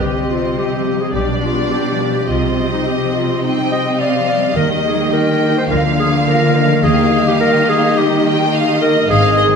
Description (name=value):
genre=classical, dramatic, fast romantic movement for symphony orchestra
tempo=106 BPM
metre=4/4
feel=straight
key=C minor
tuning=A4 = 438 Hz
part: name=warm symphonic violin section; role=melody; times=0.0-9.6 s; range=D5 to F5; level=-25 LUFS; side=equal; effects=none
part: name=warm clarinet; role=second line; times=0.0-9.6 s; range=Eb4 to Eb5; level=-18 LUFS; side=equal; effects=none
part: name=rich symphonic viola section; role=accompaniment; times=0.0-9.6 s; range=Bb3 to Ab4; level=-21 LUFS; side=right 2 dB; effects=none
part: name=concert harp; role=arpeggios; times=0.0-9.6 s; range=Ab2 to G4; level=-21 LUFS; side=left 7 dB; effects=none
part: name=rich studio double bass section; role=bass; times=0.0-9.6 s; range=Ab1 to Eb2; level=-22 LUFS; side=right 3 dB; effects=none
part: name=rich symphonic cello section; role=bass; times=0.0-9.6 s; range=Ab2 to Eb3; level=-20 LUFS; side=right 2 dB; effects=none
part: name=warm symphonic violin section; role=second line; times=1.2-9.4 s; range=D5 to G5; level=-21 LUFS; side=left 1 dB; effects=none
room=wet recital hall reverb, RT60 1.6 s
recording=minimal, uncompressed stereo recording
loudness=-13 LUFS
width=side -6 dB against mid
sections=0.0-9.6 A section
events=none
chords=0.0 Cm; 1.1 G/B; 2.3 Cm; 4.6 Eb; 5.7 Bb/D; 6.8 Eb